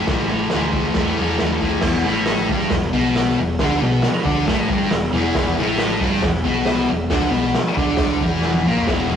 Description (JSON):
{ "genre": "garage rock duo or trio", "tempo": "136 BPM", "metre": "4/4", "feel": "straight", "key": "unclear", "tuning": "A4 = 440 Hz", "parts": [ { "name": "thick fuzz guitar", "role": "riff", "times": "0.0-9.2 s", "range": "E2 to D4", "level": "-19 LUFS", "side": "left 1 dB", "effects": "distortion" }, { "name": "growling fingered electric bass", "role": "bass", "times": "0.1-9.2 s", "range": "E1 to E2", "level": "-27 LUFS", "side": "equal", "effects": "overdrive, tube saturation" }, { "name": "raw garage drum kit", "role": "drums", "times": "0.1-9.0 s", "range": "crash cymbal, hi-hat, kick drum, snare drum, toms", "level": "-21 LUFS", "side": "equal", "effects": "none" } ], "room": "wet stone room reverb, RT60 1.1 s", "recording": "rough rehearsal-room recording, warm saturation", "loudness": "-16 LUFS", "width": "side -8 dB against mid", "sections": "0.0-1.8 A section; 1.8-8.9 B section", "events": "drum fill 8.4-8.9", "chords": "0.0 A5; 1.8 E5" }